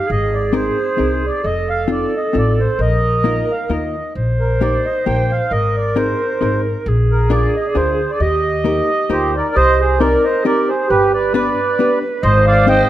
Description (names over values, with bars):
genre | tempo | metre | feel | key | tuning
musette waltz | 133 BPM | 3/4 | swing 54% on 8ths | Eb major, C minor from 9.6 s | A4 = 440 Hz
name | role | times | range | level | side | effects
mellow accordion | melody | 0.0-12.9 s | G4 to G5 | -18 LUFS | right 2 dB | none
growling clarinet | second line | 0.0-12.9 s | Eb4 to C5 | -20 LUFS | right 2 dB | none
upright bass | bass | 0.1-12.8 s | F1 to Eb2 | -18 LUFS | equal | none
hollow-body jazz guitar | accompaniment | 0.5-12.9 s | Bb3 to C5 | -21 LUFS | left 4 dB | none
room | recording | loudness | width
moderate recital hall reverb, RT60 1.5 s | none | -14 LUFS | side -13 dB against mid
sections
0.0-9.6 A section; 9.6-12.9 B section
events
none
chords
0.1 Abadd9; 1.4 F7; 2.8 Bbsus4; 4.2 Eb/Bb; 5.5 Abadd9; 6.9 Bb7; 8.2 Eb; 9.6 Cm7; 10.9 G; 12.2 Ab